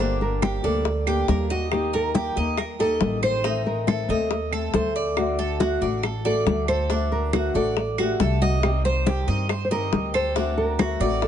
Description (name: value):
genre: latin, Cuban son and guajira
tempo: 139 BPM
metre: 4/4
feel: straight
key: G harmonic minor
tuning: A4 = 441 Hz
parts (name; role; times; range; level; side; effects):
- nylon-string guitar; melody; 0.0-11.3 s; F#4 to C5; -26 LUFS; right 1 dB; none
- fingerpicked old ladder-braced acoustic guitar; accompaniment; 0.0-11.3 s; C3 to G4; -29 LUFS; left 8 dB; none
- Cuban tres; arpeggios; 0.0-11.3 s; D4 to Eb5; -29 LUFS; right 5 dB; none
- upright bass; bass; 0.0-11.3 s; G1 to G2; -27 LUFS; right 1 dB; none
- congas; percussion; 0.0-11.3 s; none; -28 LUFS; left 3 dB; none
- bongos; percussion; 0.2-11.3 s; none; -31 LUFS; left 8 dB; none
- claves; percussion; 0.4-11.0 s; none; -33 LUFS; right 12 dB; none
room: light reverb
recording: nothing above 10.3 kHz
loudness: -21 LUFS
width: side -9 dB against mid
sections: 0.0-11.3 A section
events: none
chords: 0.0 Gm; 1.7 Eb; 3.4 Adim; 5.2 D; 8.6 Cm; 10.4 D7